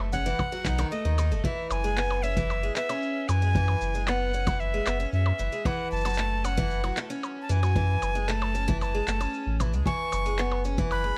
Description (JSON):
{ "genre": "folktronica", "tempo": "114 BPM", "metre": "4/4", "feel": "straight", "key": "unclear", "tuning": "A4 = 440 Hz", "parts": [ { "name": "picked twelve-string acoustic guitar", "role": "arpeggios", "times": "0.0-11.2 s", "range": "D#3 to D#4", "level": "-35 LUFS", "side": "equal", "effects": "tape echo" }, { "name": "warm sub bass", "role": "bass", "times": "0.0-11.1 s", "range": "F#1 to F#2", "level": "-30 LUFS", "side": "equal", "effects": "none" }, { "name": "electronic percussion blips, shaker and handclaps", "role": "drums", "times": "0.0-11.0 s", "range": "none", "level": "-37 LUFS", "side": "equal", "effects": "none" }, { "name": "breathy bright jazz flute", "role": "melody", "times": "0.1-11.2 s", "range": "D#5 to C#6", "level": "-34 LUFS", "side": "equal", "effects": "tape echo" }, { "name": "kick drum", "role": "drums", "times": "0.1-10.9 s", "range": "none", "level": "-33 LUFS", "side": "equal", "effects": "none" }, { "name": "glockenspiel with rubber mallets", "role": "second line", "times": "9.9-11.2 s", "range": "G#5 to F#6", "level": "-38 LUFS", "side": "equal", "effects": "tape echo" } ], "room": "little or no reverb", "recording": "dry, close 1970s-style studio recording", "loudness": "-27 LUFS", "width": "mono", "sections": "0.0-1.4 A section; 1.4-11.2 B section", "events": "none", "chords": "0.4 B7; 1.4 E6/F#; 5.7 F#m7; 7.8 Amaj7/F#; 9.9 E6/F#" }